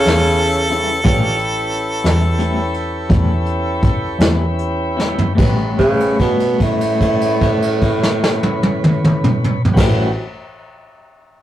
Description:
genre	slow blues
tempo	49-62 BPM (dotted quarters)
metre	12/8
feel	straight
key	A mixolydian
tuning	A4 = 441 Hz
part	clear harmonica	melody	0.0-4.6 s	A4	-21 LUFS	equal	none
part	growling tenor saxophone	second line	0.0-10.1 s	A2 to C#3	-18 LUFS	right 2 dB	none
part	dark upright piano	accompaniment	0.0-10.1 s	F#4 to C#5	-28 LUFS	right 4 dB	none
part	tonewheel organ	sustained chords	0.0-10.1 s	C#4 to C#5	-24 LUFS	equal	slow rotary speaker
part	rich double bass	bass	0.0-10.1 s	A1 to E2	-20 LUFS	equal	none
part	electric guitar through a small old amp	accompaniment	0.1-10.2 s	A2 to F#4	-24 LUFS	left 4 dB	tremolo
part	vintage brush drum kit	drums	0.1-10.0 s	crash cymbal, hi-hat, kick drum, snare drum, toms	-16 LUFS	equal	none
room	moderate small room reverb, RT60 0.6 s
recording	rough rehearsal-room recording, warm saturation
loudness	-14 LUFS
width	side -12 dB against mid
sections	0.0-5.4 A section; 5.4-10.3 B section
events	slowing down 0.0-5.4; drum fill 5.0-5.4; held note 5.4-9.8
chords	0.0 A7; 5.4 A13

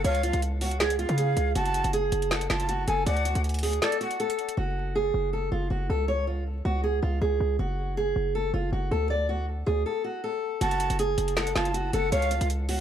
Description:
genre	hip hop, trap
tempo	159 BPM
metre	4/4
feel	half-time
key	F# harmonic minor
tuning	A4 = 440 Hz
part	fingerpicked steel-string acoustic guitar	melody	0.0-12.8 s	E#4 to D5	-28 LUFS	right 1 dB	none
part	breathy jazz flute	second line	0.0-4.5, 10.6-12.5 s	C#5 to A5	-31 LUFS	equal	ping-pong delay
part	hard-hitting 808-style bass	bass	0.0-12.8 s	F#1 to C#3	-28 LUFS	equal	none
part	trap drum kit	drums	0.0-4.6, 10.6-12.8 s	finger snaps, hi-hat, snare drum	-31 LUFS	equal	none
room	small room ambience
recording	dark, warm production, vinyl crackle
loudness	-24 LUFS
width	side -9 dB against mid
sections	0.0-4.6 A section; 4.6-10.6 B section; 10.6-12.8 A section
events	kick muted 3.8-4.6; stop 9.9-10.6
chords	0.0 C#; 1.6 F#m; 3.1 D; 4.6 F#5; 6.1 C#5; 7.6 F#madd9; 9.1 D5; 10.6 F#m; 12.1 C#

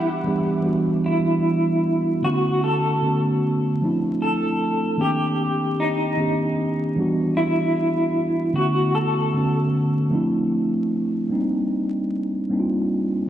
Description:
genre	lo-fi hip hop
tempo	76 BPM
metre	4/4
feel	swing 56% on 16ths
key	unclear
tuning	A4 = 442 Hz
part	electric guitar through a small old amp	melody	0.0-9.5 s	Eb4 to A4	-24 LUFS	left 1 dB	tremolo, low-pass filter, analog delay
part	mellow tine electric piano	accompaniment	0.0-13.3 s	D3 to F#5	-21 LUFS	right 1 dB	medium stereo tremolo, cassette tape, low-pass filter
part	string machine, cellos	sustained chords	0.0-0.6 s	G4 to D6	-36 LUFS	equal	ensemble chorus, low-pass filter
room	wet lush hall reverb, RT60 3.3 s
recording	dreamy mix soaked in reverb, vinyl crackle, nothing above 10.3 kHz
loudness	-19 LUFS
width	side -11 dB against mid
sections	0.7-13.3 A section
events	none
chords	0.0 Em9; 2.2 Bm9; 3.8 Dm9; 5.0 Cm9; 7.0 Em9; 8.6 Bm9; 10.1 Dm9; 11.3 Cm9

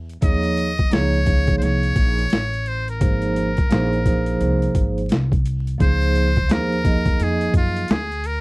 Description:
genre	hip hop, jazz-hop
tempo	86 BPM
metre	4/4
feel	swing 61% on 16ths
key	Db major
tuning	A4 = 441 Hz
part	upright bass	bass	0.0-8.4 s	Ab1 to Gb2	-22 LUFS	equal	none
part	boom bap sampler-style drum kit	drums	0.1-8.4 s	hi-hat, kick drum, snare drum	-19 LUFS	equal	overdrive
part	trumpet with metal mute	melody	0.2-8.4 s	F4 to Eb5	-25 LUFS	equal	none
part	vibraphone with soft mallets	accompaniment	0.2-7.8 s	F3 to Eb5	-22 LUFS	right 2 dB	none
room	little or no reverb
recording	dry, close 1970s-style studio recording, vinyl crackle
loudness	-17 LUFS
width	side -24 dB against mid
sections	0.0-8.4 A section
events	none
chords	0.2 Eb5; 3.0 Ab69; 5.8 Dbmaj7

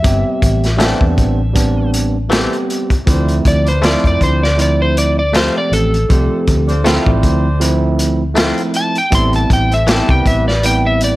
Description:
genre	straight-eighth soul blues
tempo	79 BPM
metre	4/4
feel	swing 55% on 16ths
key	unclear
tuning	A4 = 436 Hz
part	electric slide guitar	melody	0.0-11.2 s	A4 to C6	-18 LUFS	equal	none
part	overdriven tine electric piano	accompaniment	0.0-11.2 s	F3 to G4	-18 LUFS	right 2 dB	none
part	vintage muted fingered electric bass	bass	0.0-11.2 s	G1 to F2	-16 LUFS	equal	none
part	crunchy breakbeat drum kit	drums	0.0-11.2 s	hi-hat, kick drum, snare drum	-16 LUFS	equal	none
part	direct-recorded clean electric guitar	stabs	0.8-10.1 s	E3 to G4	-22 LUFS	left 3 dB	none
part	mellow horn section	sustained chords	3.1-10.8 s	A3 to C5	-27 LUFS	left 1 dB	none
room	light reverb, studio ambience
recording	none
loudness	-11 LUFS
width	side -17 dB against mid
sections	0.0-11.2 A section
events	electric slide guitar solo 0.0-11.2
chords	0.0 Am7; 3.1 Dm7; 9.1 Am7

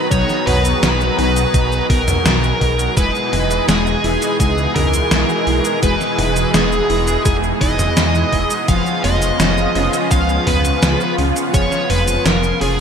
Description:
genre	synthwave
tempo	84 BPM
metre	4/4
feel	straight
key	unclear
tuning	A4 = 441 Hz
part	dark smooth lead guitar	melody	0.0-12.8 s	G#4 to E#5	-20 LUFS	equal	overdrive, ping-pong delay
part	soft supersaw	sustained chords	0.0-12.8 s	B2 to A#5	-21 LUFS	equal	ensemble chorus, sidechain pumping
part	soft round pluck	arpeggios	0.0-12.8 s	E#3 to E4	-24 LUFS	left 4 dB	lush chorus, ping-pong delay
part	chorused polysynth	stabs	0.0-12.8 s	B2 to A#5	-24 LUFS	right 3 dB	none
part	dark detuned saw bass	bass	0.1-12.8 s	E1 to E2	-20 LUFS	equal	none
part	electronic kick drum	drums	0.1-11.7 s	none	-18 LUFS	equal	overdrive, studio reverb
part	gated 80s digital drum machine	drums	0.1-12.8 s	cabasa, hi-hat, snare drum, toms	-21 LUFS	equal	gated reverb, gated reverb snare, overdrive, studio reverb
room	moderate lush hall reverb, RT60 2.8 s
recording	bright 1980s-style digital production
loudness	-13 LUFS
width	side -7 dB against mid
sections	0.0-12.8 A section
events	none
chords	0.0 Bmaj7; 3.0 Emaj7; 8.7 C#7/E#

